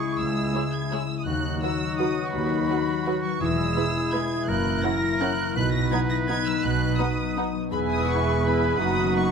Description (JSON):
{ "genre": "classical, orchestral ballroom waltz", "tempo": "167 BPM", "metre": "3/4", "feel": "uneven beats, rubato", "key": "B major", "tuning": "A4 = 440 Hz", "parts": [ { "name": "muted symphonic violin section", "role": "melody", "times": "0.0-9.3 s", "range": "B5 to A#6", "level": "-31 LUFS", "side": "left 1 dB", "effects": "none" }, { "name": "clear oboe", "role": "second line", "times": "0.0-9.3 s", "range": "F#4 to B4", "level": "-32 LUFS", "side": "right 3 dB", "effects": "none" }, { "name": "mellow clarinet", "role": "second line", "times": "0.0-9.3 s", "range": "D#4 to G#4", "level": "-32 LUFS", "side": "left 1 dB", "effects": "none" }, { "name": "warm French horn section", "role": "sustained chords", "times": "0.0-9.3 s", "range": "F#3 to G#4", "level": "-30 LUFS", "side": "left 4 dB", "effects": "none" }, { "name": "concert harp", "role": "arpeggios", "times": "0.0-9.3 s", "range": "E2 to B4", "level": "-31 LUFS", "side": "left 9 dB", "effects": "none" }, { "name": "muted symphonic cello section", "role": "bass", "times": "0.2-9.3 s", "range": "C#2 to B2", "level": "-32 LUFS", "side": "right 4 dB", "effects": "none" }, { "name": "muted symphonic double bass section", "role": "bass", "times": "0.2-9.3 s", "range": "E1 to D#2", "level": "-30 LUFS", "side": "right 4 dB", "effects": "none" }, { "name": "muted symphonic violin section", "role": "second line", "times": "0.5-9.3 s", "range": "F#4 to B5", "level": "-34 LUFS", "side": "left 1 dB", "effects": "none" }, { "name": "muted symphonic viola section", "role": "accompaniment", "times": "0.5-9.3 s", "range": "F#3 to F#4", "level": "-31 LUFS", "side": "right 3 dB", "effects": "none" } ], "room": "moderate scoring stage reverb, RT60 1.9 s", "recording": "close, detailed microphones", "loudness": "-22 LUFS", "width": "side -6 dB against mid", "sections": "0.0-9.3 A section", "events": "none", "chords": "0.0 C#m; 1.3 B/D#; 3.4 E; 4.5 F#7; 5.6 B; 7.7 E; 8.8 B/F#" }